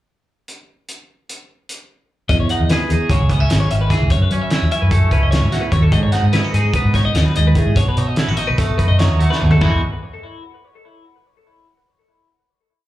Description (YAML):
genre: math rock and midwest emo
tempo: 295 BPM (eighths)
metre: 9/8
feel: straight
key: unclear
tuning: A4 = 440 Hz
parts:
  - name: loose indie drum kit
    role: drums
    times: 0.5-9.7 s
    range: hi-hat, kick drum, snare drum, splash cymbal, toms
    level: -20 LUFS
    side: equal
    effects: none
  - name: twangy electric guitar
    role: accompaniment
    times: 2.3-9.8 s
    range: E2 to G#4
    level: -23 LUFS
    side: right 7 dB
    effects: spring reverb, slapback echo
  - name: twelve-string electric guitar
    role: arpeggios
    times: 2.3-9.8 s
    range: E4 to F#5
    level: -23 LUFS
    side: left 5 dB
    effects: analog delay, slapback echo
  - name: fingered electric bass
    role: bass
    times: 2.3-9.8 s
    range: G#1 to F#3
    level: -16 LUFS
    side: equal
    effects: none
room: little or no reverb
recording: live gig heard through the venue's PA, club reverb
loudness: -14 LUFS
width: side -15 dB against mid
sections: 0.5-2.3 pickup bar; 2.3-9.6 A section; 9.6-11.5 final chord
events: drum fill 9.3-9.6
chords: 0.5 N.C.; 2.3 Emaj9; 3.1 C#m7; 4.1 F#m7; 5.9 G#m7; 7.8 B7; 9.6 N.C.